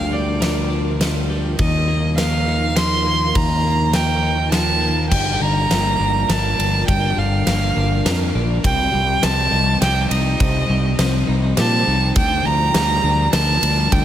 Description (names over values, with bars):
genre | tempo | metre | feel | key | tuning
post-rock | 102 BPM | 3/4 | straight | G minor | A4 = 440 Hz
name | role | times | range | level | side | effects
rich violin | melody | 0.0-14.0 s | D5 to C6 | -20 LUFS | right 2 dB | digital delay
granular cloud pad | sustained chords | 0.0-14.0 s | F3 to C5 | -29 LUFS | right 1 dB | built-in reverb
twelve-string electric guitar | arpeggios | 0.0-14.0 s | G2 to Bb4 | -25 LUFS | left 3 dB | vibrato effect, digital delay
growling fingered electric bass | bass | 0.0-14.0 s | G1 to Bb2 | -20 LUFS | equal | overdrive
huge arena drum kit | drums | 0.4-14.0 s | crash cymbal, kick drum, ride cymbal, snare drum | -22 LUFS | equal | none
room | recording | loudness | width
light reverb | none | -15 LUFS | side -11 dB against mid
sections
0.0-5.1 A section; 5.1-14.0 B section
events
none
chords
0.0 Gm7/D; 1.6 Ebsus2; 5.1 Gm7; 8.6 Cm; 12.2 Gm7/D